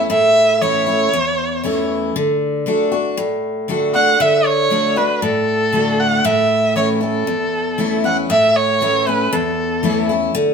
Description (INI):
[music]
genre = country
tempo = 117 BPM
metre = 4/4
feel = straight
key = A major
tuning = A4 = 440 Hz
[part]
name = picked steel-string acoustic guitar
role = accompaniment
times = 0.0-10.5 s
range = E2 to F#4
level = -18 LUFS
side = left 2 dB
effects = none
[part]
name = warm erhu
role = melody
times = 0.1-10.1 s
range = A4 to F#5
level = -16 LUFS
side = right 2 dB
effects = none
[sound]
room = moderate studio reverb, RT60 0.9 s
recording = band playing live in one room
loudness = -14 LUFS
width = side -6 dB against mid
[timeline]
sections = 0.1-8.3 A section; 8.3-10.5 B section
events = none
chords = 0.1 A; 2.2 D; 6.3 A